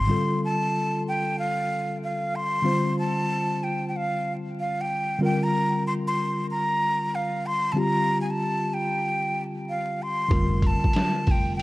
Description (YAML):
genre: hip hop, jazz-hop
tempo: 94 BPM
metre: 4/4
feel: swing 64% on 16ths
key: unclear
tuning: A4 = 439 Hz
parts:
  - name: breathy jazz flute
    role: melody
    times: 0.0-11.6 s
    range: F5 to C6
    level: -26 LUFS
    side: equal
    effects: tape echo
  - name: tine electric piano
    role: accompaniment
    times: 0.0-11.6 s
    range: D3 to C5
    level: -27 LUFS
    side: left 1 dB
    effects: medium stereo tremolo
  - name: upright bass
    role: bass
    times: 0.0-0.1, 10.3-11.6 s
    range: F1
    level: -27 LUFS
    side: equal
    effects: none
  - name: trip hop sampler-style drum kit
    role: drums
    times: 10.3-11.6 s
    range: hi-hat, kick drum, snare drum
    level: -23 LUFS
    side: equal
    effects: none
room: moderate small room reverb, RT60 0.5 s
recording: dark, warm production, vinyl crackle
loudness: -23 LUFS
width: side -18 dB against mid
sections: 0.1-11.6 A section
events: none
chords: 0.1 G9sus4; 5.2 C9sus4; 10.3 Fsus24